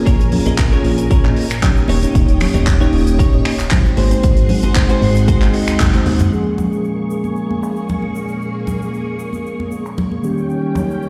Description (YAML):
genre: nu-disco, nu disco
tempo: 115 BPM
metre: 4/4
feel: straight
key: Bb minor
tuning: A4 = 440 Hz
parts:
  - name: mellow tine electric piano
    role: accompaniment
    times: 0.0-11.1 s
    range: Eb3 to Eb5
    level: -22 LUFS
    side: equal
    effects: slapback echo
  - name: string machine, full ensemble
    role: sustained chords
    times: 0.0-11.1 s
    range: Eb3 to Eb6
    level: -30 LUFS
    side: equal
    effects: ensemble chorus, sidechain pumping
  - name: clean electric guitar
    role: riff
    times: 0.1-6.1 s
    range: Eb4 to Eb5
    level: -27 LUFS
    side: equal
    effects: analog chorus, slapback echo
  - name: chorused synth bass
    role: bass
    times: 0.1-6.2 s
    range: Eb1 to Eb2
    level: -19 LUFS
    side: equal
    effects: none
  - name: damped 70s drum kit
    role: drums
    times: 0.1-10.9 s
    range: finger snaps, handclaps, hi-hat, toms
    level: -25 LUFS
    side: equal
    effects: low-pass filter on hats, low-pass filter on toms, low-pass filter on snare, low-pass filter on room
  - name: electronic kick drum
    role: drums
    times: 0.1-5.9 s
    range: none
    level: -17 LUFS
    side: equal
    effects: none
  - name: egg shaker and congas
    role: percussion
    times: 0.1-11.1 s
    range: none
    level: -27 LUFS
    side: equal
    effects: none
room: light reverb, studio reverb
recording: played on a big sound system in a bare room, stone room reverb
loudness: -16 LUFS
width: mono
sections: 0.0-6.3 A section; 6.3-11.1 B section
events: drum fill 5.8-6.3; band accent 5.8; filter sweep on string machine 6.3-11.1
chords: 0.0 Bbm7; 1.9 Eb7; 4.0 Ab7; 6.3 Bbm7; 10.2 Eb7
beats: | 0.06 0.59 1.11 1.63 | 2.15 2.67 3.19 3.72 | 4.24 4.76 5.28 5.80 | 6.33 6.85 7.37 7.89 | 8.41 8.93 9.46 9.98 | 10.50 11.02